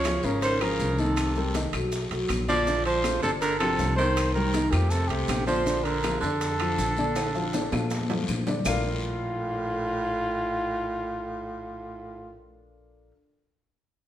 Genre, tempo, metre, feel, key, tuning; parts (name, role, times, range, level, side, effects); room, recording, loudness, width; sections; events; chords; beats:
Afro-Cuban jazz; 160 BPM; 4/4; straight; Bb major; A4 = 440 Hz
breathy trumpet; melody; 0.0-12.4 s; F4 to D5; -29 LUFS; equal
clear baritone saxophone; second line; 0.0-12.4 s; A2 to F3; -32 LUFS; right 4 dB
upright bass; bass; 0.0-13.1 s; G1 to Bb2; -30 LUFS; equal
claves; percussion; 0.0-8.7 s; -40 LUFS; left 5 dB
guiro; percussion; 0.0-8.7 s; -40 LUFS; left 4 dB
maracas; percussion; 0.0-8.7 s; -41 LUFS; right 2 dB
dark upright piano; accompaniment; 0.1-13.1 s; Db3 to F5; -31 LUFS; left 2 dB
bongos; percussion; 0.1-8.8 s; -39 LUFS; left 4 dB
congas; percussion; 0.1-8.7 s; -36 LUFS; left 3 dB
timbales; percussion; 0.1-8.7 s; -38 LUFS; right 6 dB
wet large studio reverb, RT60 1.2 s; -24 LUFS; side -11 dB against mid
0.0-8.7 A section; 8.7-11.6 B section
drum fill 7.2-8.7
0.0 Db69; 1.2 Cm7; 1.9 B5; 2.7 Bbmaj7; 3.4 G9sus4; 4.2 Cm7; 4.9 F69; 5.7 Bbmaj7
0.05 0.42 0.80 | 1.17 1.55 1.92 2.30 | 2.67 3.05 3.42 3.80 | 4.17 4.54 4.92 5.29 | 5.67 6.04 6.42 6.79 | 7.17 7.54 7.91 8.29 | 8.66 9.03 9.41 9.78 | 10.15 10.53 10.90 11.27